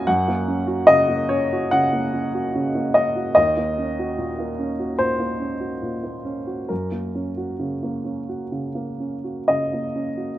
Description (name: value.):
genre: neoclassical minimalist piano.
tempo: 60-75 BPM.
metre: 4/4.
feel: rubato.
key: unclear.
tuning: A4 = 440 Hz.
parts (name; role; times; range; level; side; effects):
warm upright piano; solo; 0.0-10.4 s; Eb2 to Gb5; -20 LUFS; equal; none.
room: light reverb, small room ambience.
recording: rough home demo mix.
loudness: -20 LUFS.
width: side -14 dB against mid.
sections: 0.0-10.4 A section.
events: none.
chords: 0.1 Gb; 3.4 Ebm7; 6.7 Gb.